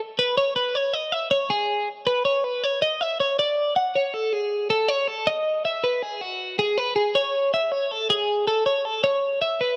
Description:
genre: rock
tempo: 159 BPM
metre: 5/4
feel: straight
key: E major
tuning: A4 = 440 Hz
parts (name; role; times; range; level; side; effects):
- twelve-string electric guitar; solo; 0.2-9.8 s; F#4 to F#5; -23 LUFS; equal; none
room: moderate plate reverb, RT60 3.0 s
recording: none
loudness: -23 LUFS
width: mono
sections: 0.0-3.4 A section; 3.4-9.8 B section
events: none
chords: none

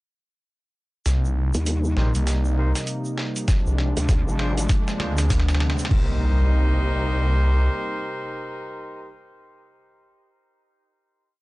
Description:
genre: glitch hop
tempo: 99 BPM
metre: 4/4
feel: swing 61% on 16ths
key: C minor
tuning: A4 = 438 Hz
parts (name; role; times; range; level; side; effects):
- warm analog pad; sustained chords; 1.1-9.1 s; C3 to Eb4; -29 LUFS; equal; chorus, sidechain pumping
- phased detuned saw bass; bass; 1.1-7.7 s; Bb1 to D2; -20 LUFS; equal; phaser, tube saturation
- boom bap sampler-style drum kit; drums; 1.1-6.1 s; crash cymbal, hi-hat, snare drum; -31 LUFS; equal; overdrive, high-pass filter on snare, high-pass filter on hats, high-pass filter on cymbals
- egg shaker; percussion; 1.1-5.9 s; none; -37 LUFS; right 1 dB; none
- riser and impact; sound effects; 3.3-9.8 s; none; -35 LUFS; equal; none
- vowel-sweep wobble bass; bass; 1.5-4.7 s; Ab1 to Eb2; -23 LUFS; equal; chorus, tube saturation
- warm horn section; stabs; 2.0-9.1 s; D4 to C5; -30 LUFS; equal; vintage 12-bit sampler grit, sidechain pumping, low-pass filter, analog delay
- electronic kick drum; drums; 3.5-6.1 s; none; -20 LUFS; equal; overdrive
room: little or no reverb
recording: dry, gritty hardware recording, cassette tape, nothing above 10.3 kHz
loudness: -20 LUFS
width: side -20 dB against mid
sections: 1.1-5.9 build; 5.9-8.3 final chord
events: build-up 1.1-5.9; drum fill 1.1-5.9; filter sweep on horn section 1.1-5.9; riser 3.3-5.9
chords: 1.1 Cm7; 3.5 Dm7b5; 5.9 Cm7

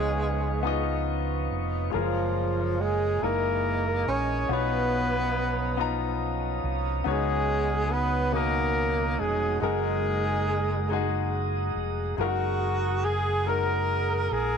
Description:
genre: gospel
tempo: 47 BPM (dotted quarters)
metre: 6/8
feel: straight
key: F# major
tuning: A4 = 440 Hz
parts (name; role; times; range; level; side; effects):
- breathy tenor saxophone; melody; 0.0-14.6 s; E#3 to A#4; -30 LUFS; right 4 dB; none
- breathy trumpet; melody; 0.0-14.6 s; E#4 to C#5; -31 LUFS; left 2 dB; none
- clear baby grand piano; accompaniment; 0.0-14.6 s; B2 to A#5; -30 LUFS; left 12 dB; none
- mellow French horn section; sustained chords; 0.0-12.2 s; B2 to D#5; -39 LUFS; right 14 dB; none
- mellow tonewheel organ; sustained chords; 0.0-14.6 s; G#4 to D#6; -36 LUFS; right 12 dB; slow rotary speaker
- fingered electric bass; bass; 0.0-14.6 s; E#1 to C#2; -30 LUFS; right 1 dB; none
room: light reverb, studio reverb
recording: 1960s-style stereo with parts hard left and right, nothing above 10.7 kHz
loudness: -24 LUFS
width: side -6 dB against mid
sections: 0.0-12.2 A section; 12.2-14.6 A section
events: none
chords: 0.0 C#9; 1.9 F#maj9; 3.2 F#13; 4.5 Bmaj9#11; 7.1 C#9sus4; 9.6 F#69

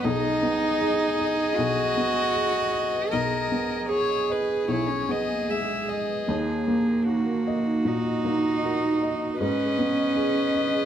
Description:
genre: neoclassical piano and strings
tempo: 77 BPM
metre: 4/4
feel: rubato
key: G# minor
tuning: A4 = 440 Hz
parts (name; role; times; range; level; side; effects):
- warm cello; second line; 0.0-10.9 s; G#3 to A#4; -26 LUFS; right 4 dB; none
- felt-muted upright piano; accompaniment; 0.0-10.9 s; B1 to D#5; -29 LUFS; left 2 dB; none
- rich viola; accompaniment; 0.0-10.9 s; F#4 to B4; -32 LUFS; right 2 dB; none
- vibraphone with soft mallets; arpeggios; 0.0-10.9 s; D#4 to G#5; -33 LUFS; right 4 dB; slapback echo
- warm violin; melody; 0.1-10.9 s; B4 to E5; -28 LUFS; left 6 dB; none
room: moderate recital hall reverb, RT60 1.4 s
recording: close, detailed microphones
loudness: -22 LUFS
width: side -9 dB against mid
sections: 0.0-10.9 A section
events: none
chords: 0.1 G#m/B; 6.3 D#m; 9.4 G#m

